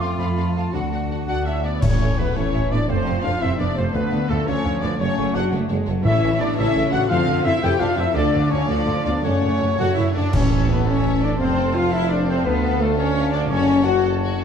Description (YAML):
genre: cinematic, heroic adventure film score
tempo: 114 BPM (dotted quarters)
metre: 6/8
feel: straight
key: A major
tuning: A4 = 442 Hz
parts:
  - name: rich symphonic violin section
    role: melody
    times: 0.0-14.4 s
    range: F4 to G5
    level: -32 LUFS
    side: left 4 dB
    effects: none
  - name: rich studio violin section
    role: second line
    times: 0.0-14.0 s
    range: E4 to F#5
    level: -33 LUFS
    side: left 3 dB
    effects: none
  - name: silver concert flute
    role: second line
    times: 0.0-14.2 s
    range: A4 to C6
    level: -32 LUFS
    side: left 1 dB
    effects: none
  - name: clear symphonic viola section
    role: accompaniment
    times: 0.0-14.0 s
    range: F3 to F#4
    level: -30 LUFS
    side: equal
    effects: none
  - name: mellow French horn section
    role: sustained chords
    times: 0.0-14.0 s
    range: A3 to G4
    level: -24 LUFS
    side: left 4 dB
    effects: none
  - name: concert harp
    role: arpeggios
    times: 0.0-14.4 s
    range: F#2 to A5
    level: -30 LUFS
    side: left 9 dB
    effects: none
  - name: clear studio cello section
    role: bass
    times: 0.0-14.0 s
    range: C3 to F#4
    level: -27 LUFS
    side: right 2 dB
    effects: none
  - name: rich chamber double bass section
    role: bass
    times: 0.0-14.4 s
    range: F#1 to F#2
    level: -25 LUFS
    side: right 3 dB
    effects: none
  - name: clear oboe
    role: second line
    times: 1.3-14.4 s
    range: A4 to G5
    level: -34 LUFS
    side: right 1 dB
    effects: none
  - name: dark trumpet section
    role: stabs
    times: 1.3-14.0 s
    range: A4 to G5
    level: -30 LUFS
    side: right 1 dB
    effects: none
  - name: warm tuba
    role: bass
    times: 1.8-14.4 s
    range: F1 to D2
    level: -28 LUFS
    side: right 3 dB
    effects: none
  - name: clash cymbals, concert bass drum and cymbal swell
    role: percussion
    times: 1.8-2.5, 8.2-11.0 s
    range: none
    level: -27 LUFS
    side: equal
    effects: none
  - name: timpani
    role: percussion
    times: 1.8-2.3, 6.0-6.5, 10.3-10.8 s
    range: A2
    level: -26 LUFS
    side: left 2 dB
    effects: none
room: wet scoring stage reverb, RT60 1.8 s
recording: dark, warm production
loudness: -18 LUFS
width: side -7 dB against mid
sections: 0.0-1.8 A section; 1.8-10.3 B section; 10.3-14.4 C section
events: band accent 1.8-2.2, 10.3-10.7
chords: 0.0 F; 0.7 D; 1.8 A; 2.9 F; 4.0 Dm; 5.0 F#m; 6.1 A; 7.1 F; 8.2 Dm; 9.2 F#m; 10.3 A; 11.4 F; 12.5 Dm; 13.5 F#m